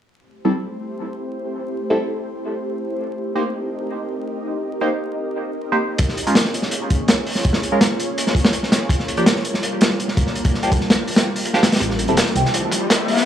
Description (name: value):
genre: drum and bass, jungle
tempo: 165 BPM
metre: 4/4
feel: straight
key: A phrygian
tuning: A4 = 439 Hz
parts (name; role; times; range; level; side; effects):
- ethereal airy pad; sustained chords; 0.6-13.2 s; G3 to Eb5; -25 LUFS; equal; ensemble chorus, built-in reverb
- band-passed chord stab; stabs; 0.4-12.2 s; F3 to C5; -22 LUFS; right 1 dB; phaser, dub echo
- crunchy breakbeat drum kit; drums; 6.0-13.3 s; hi-hat, kick drum, snare drum; -17 LUFS; equal; high-pass filter on kick, high-pass filter on hats, high-pass filter on snare, high-pass filter on room
- detuned saw bass; bass; 11.8-12.4 s; E1 to C2; -22 LUFS; equal; none
- riser; sound effects; 12.3-13.3 s; none; -23 LUFS; left 3 dB; none
- breathy mellow jazz flute; melody; 12.4-13.3 s; E5 to G5; -24 LUFS; equal; vintage 12-bit sampler grit, low-pass filter, dub echo
room: light reverb, small room ambience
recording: vinyl crackle, small room reverb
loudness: -17 LUFS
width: side -10 dB against mid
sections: 0.2-11.8 A section; 11.8-13.3 B section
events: filter sweep on ambient pad 0.2-11.8; filter sweep on synth stab 0.2-11.8; kick drops out 11.1-11.8; build-up 11.8-13.3; riser 12.3-13.3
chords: 0.2 Am7; 3.1 Cm7; 6.0 Bbm7; 8.9 Gm7; 11.8 Am7